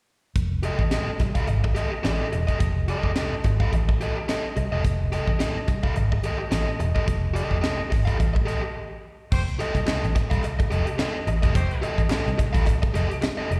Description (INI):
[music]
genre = funk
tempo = 107 BPM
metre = 4/4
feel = swing 56% on 16ths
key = F mixolydian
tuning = A4 = 440 Hz
[part]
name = vintage muted fingered electric bass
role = bass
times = 0.4-13.6 s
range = E1 to C2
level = -27 LUFS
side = equal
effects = none
[part]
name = tight funk drum kit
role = drums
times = 0.4-13.6 s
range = crash cymbal, hi-hat, kick drum, snare drum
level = -27 LUFS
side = equal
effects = none
[part]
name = biting overdriven guitar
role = accompaniment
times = 0.6-13.6 s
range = G4 to F5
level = -30 LUFS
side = equal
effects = spring reverb, slapback echo
[part]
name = clear horn section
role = second line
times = 9.3-11.9 s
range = A3 to C5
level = -36 LUFS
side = equal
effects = slapback echo
[part]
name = group handclap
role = percussion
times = 9.9-13.4 s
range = none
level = -43 LUFS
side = equal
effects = none
[sound]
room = light reverb, small room ambience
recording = live gig heard through the venue's PA, recital hall reverb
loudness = -24 LUFS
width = mono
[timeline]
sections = 0.4-9.3 A section; 9.3-13.6 B section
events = break 8.8-9.3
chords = 0.4 F9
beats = | 0.36 0.92 1.48 2.04 | 2.60 3.16 3.72 4.28 | 4.84 5.40 5.96 6.52 | 7.08 7.63 8.19 8.75 | 9.31 9.87 10.43 10.99 | 11.55 12.11 12.67 13.23